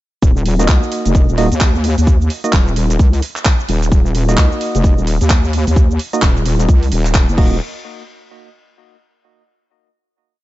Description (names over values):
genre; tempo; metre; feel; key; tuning
bass house; 130 BPM; 4/4; swing 60% on 16ths; Eb minor; A4 = 435 Hz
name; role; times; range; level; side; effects
wobble bass; bass; 0.2-7.6 s; Eb1 to Eb2; -15 LUFS; equal; chorus, overdrive, sidechain pumping
electronic kick drum; drums; 0.2-7.5 s; none; -12 LUFS; equal; none
house drum kit; drums; 0.2-7.5 s; crash cymbal, handclaps, hi-hat, shaker; -22 LUFS; right 1 dB; none
percussive organ stab; stabs; 0.6-7.6 s; Bb3 to Eb5; -21 LUFS; right 2 dB; chorus, cassette tape, sidechain pumping, ping-pong delay
room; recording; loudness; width
little or no reverb; nothing above 7.8 kHz; -12 LUFS; side -16 dB against mid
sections
0.2-7.6 drop; 7.6-9.5 final hit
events
drop 0.2-7.6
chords
0.2 Ebm; 7.6 N.C.